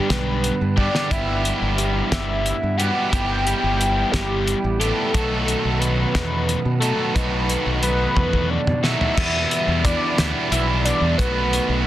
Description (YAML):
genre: indie rock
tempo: 60 BPM (dotted quarters)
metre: 6/8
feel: straight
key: E minor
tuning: A4 = 441 Hz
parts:
  - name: fat analog lead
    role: melody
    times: 0.0-11.8 s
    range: G4 to G5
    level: -25 LUFS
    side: equal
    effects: none
  - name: crunchy overdriven guitar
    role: riff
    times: 0.0-11.9 s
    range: E2 to A4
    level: -24 LUFS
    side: right 7 dB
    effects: lush chorus
  - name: overdriven electric guitar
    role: riff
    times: 0.0-11.9 s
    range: E2 to G4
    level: -26 LUFS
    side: left 7 dB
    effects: none
  - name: modern bright fingered electric bass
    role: bass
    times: 0.1-11.9 s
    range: G1 to B2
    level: -24 LUFS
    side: equal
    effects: none
  - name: cloth-damped thuddy drum kit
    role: drums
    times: 0.1-11.7 s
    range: crash cymbal, hi-hat, kick drum, snare drum, toms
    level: -23 LUFS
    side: equal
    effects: none
room: light reverb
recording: dense, heavily limited modern master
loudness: -18 LUFS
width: side -13 dB against mid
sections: 0.0-9.2 A section; 9.2-11.9 B section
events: drum fill 0.8-1.1, 8.2-9.2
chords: 0.0 G; 1.1 Em/G; 5.1 B7sus4; 9.2 Em7; 11.2 B7(no3)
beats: 0.10 | 1.11 2.12 | 3.13 4.13 | 5.14 6.15 | 7.16 8.17 | 9.18 10.18 | 11.19